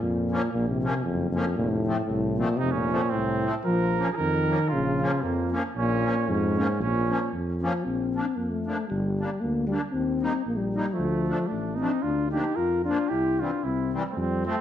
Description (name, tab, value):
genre	alpine folk, alpine dance band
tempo	115 BPM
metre	2/4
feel	swing 55% on 8ths, rubato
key	Bb minor, Bb major from 7.9 s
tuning	A4 = 438 Hz
part	dark euphonium	melody	0.0-14.6 s	F2 to F4	-26 LUFS	left 2 dB	none
part	dark tuba	bass	0.0-14.5 s	F1 to F2	-30 LUFS	right 1 dB	none
part	musette accordion	accompaniment	0.3-14.6 s	E3 to Eb4	-32 LUFS	left 1 dB	none
part	mellow trumpet	second line	2.6-7.3, 10.9-14.6 s	A3 to Bb4	-30 LUFS	right 6 dB	none
room	moderate recital hall reverb, RT60 1.4 s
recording	dark, warm production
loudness	-24 LUFS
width	side -10 dB against mid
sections	0.0-7.9 A section; 7.9-14.6 B section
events	none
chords	0.0 Bbm; 1.6 F; 3.7 Bbm; 7.9 Bb; 8.9 Gm; 9.9 Eb; 11.0 Dm; 12.0 Bb/D; 13.1 C